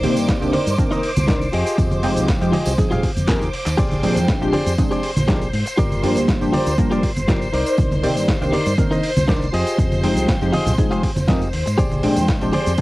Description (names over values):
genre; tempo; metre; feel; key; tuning
filtered disco house; 120 BPM; 4/4; straight; F dorian; A4 = 443 Hz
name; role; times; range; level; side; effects
funky polysynth comp; accompaniment; 0.0-12.8 s; Eb3 to G5; -21 LUFS; equal; chorus, phaser, sidechain pumping, cassette tape
phased string machine; sustained chords; 0.0-12.8 s; C5 to D6; -27 LUFS; equal; ensemble chorus, phaser, sidechain pumping, cassette tape
direct-recorded clean electric guitar; riff; 0.0-12.7 s; Eb4 to F5; -23 LUFS; left 1 dB; sidechain pumping, cassette tape
fingered electric bass; bass; 0.0-12.7 s; F1 to C3; -23 LUFS; equal; tube saturation, sidechain pumping
dusty soul sampler-style drum kit; drums; 0.0-12.8 s; cabasa, crash cymbal, handclaps, hi-hat, ride cymbal, snare drum; -28 LUFS; equal; overdrive, sidechain pumping on hats, cassette tape, sidechain pumping on cymbals, sidechain pumping on perc
tambourine and congas; percussion; 0.2-12.8 s; none; -26 LUFS; right 1 dB; sidechain pumping on perc
electronic kick drum; drums; 0.3-12.8 s; none; -20 LUFS; equal; cassette tape
room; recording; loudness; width
moderate studio reverb, RT60 0.5 s; home recording on cassette, faint mains hum; -16 LUFS; side -19 dB against mid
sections
0.0-12.8 A section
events
drum fill 3.3-3.8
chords
0.0 Cm9; 1.5 Fm9; 3.8 Bb13; 5.8 Gm7; 7.5 Cm9; 9.5 Fm9; 11.8 Bb13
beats
0.28 0.78 1.28 | 1.78 2.28 2.78 3.28 | 3.78 4.28 4.78 5.28 | 5.78 6.28 6.78 7.28 | 7.78 8.28 8.78 9.28 | 9.78 10.28 10.78 11.28 | 11.78 12.28 12.78